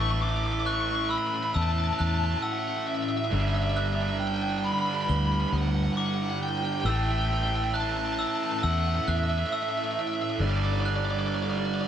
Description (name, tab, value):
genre	post-rock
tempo	68 BPM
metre	4/4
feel	straight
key	A mixolydian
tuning	A4 = 439 Hz
part	fuzz lead guitar	melody	0.0-11.9 s	D5 to D6	-31 LUFS	left 2 dB	distortion, slapback echo
part	evolving wavetable pad	sustained chords	0.0-11.9 s	G3 to B4	-39 LUFS	left 6 dB	ensemble chorus, built-in reverb, phaser
part	glockenspiel with hard plastic mallets	arpeggios	0.0-11.7 s	D6 to G7	-35 LUFS	left 1 dB	slapback echo
part	tight distorted guitar	riff	0.0-11.9 s	G2 to A3	-30 LUFS	right 5 dB	distortion
part	vintage muted fingered electric bass	bass	0.0-11.8 s	G1 to E2	-28 LUFS	left 1 dB	none
room	moderate large studio reverb, RT60 0.9 s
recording	none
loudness	-25 LUFS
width	side -9 dB against mid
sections	0.0-11.9 A section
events	none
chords	0.0 A; 3.3 G6; 6.9 A; 10.4 G6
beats	0.66 1.55 2.43 | 3.32 4.21 5.09 5.98 | 6.87 7.75 8.64 9.53 | 10.41 11.30